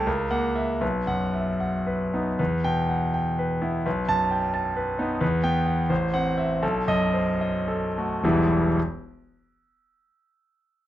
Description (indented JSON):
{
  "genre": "classical, romantic character piece for solo piano",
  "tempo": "68-89 BPM",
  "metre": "2/4",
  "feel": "rubato",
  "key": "E minor",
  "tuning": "A4 = 440 Hz",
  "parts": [
    { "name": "bright concert grand piano", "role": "solo", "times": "0.0-8.8 s", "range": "E1 to A5", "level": "-22 LUFS", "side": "equal", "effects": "none" }
  ],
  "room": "little or no reverb",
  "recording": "dark, warm production, nothing above 10.7 kHz",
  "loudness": "-22 LUFS",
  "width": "side -13 dB against mid",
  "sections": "0.0-8.2 A section; 8.2-9.7 B section",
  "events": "slowing down 4.5-8.2",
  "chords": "0.1 F#7/C#; 0.8 B; 2.4 Em; 3.9 B7; 5.2 Em; 5.9 F#dim/A; 6.6 B7; 8.2 Em"
}